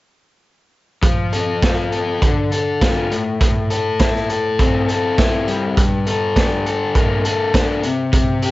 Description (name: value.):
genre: indie rock.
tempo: 101 BPM.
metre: 4/4.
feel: straight.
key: F major.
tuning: A4 = 441 Hz.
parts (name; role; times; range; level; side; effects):
raw garage guitar; riff; 1.0-8.5 s; G2 to A4; -18 LUFS; left 3 dB; overdrive, cassette tape.
raw garage drum kit; drums; 1.0-8.5 s; hi-hat, kick drum, snare drum; -18 LUFS; right 1 dB; none.
room: light reverb.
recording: home recording on cassette, nothing above 7.8 kHz.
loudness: -15 LUFS.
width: side -18 dB against mid.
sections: 1.0-8.5 A section.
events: none.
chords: 1.0 F; 2.2 Dm; 3.1 Am; 5.8 Gmadd9; 7.8 C5.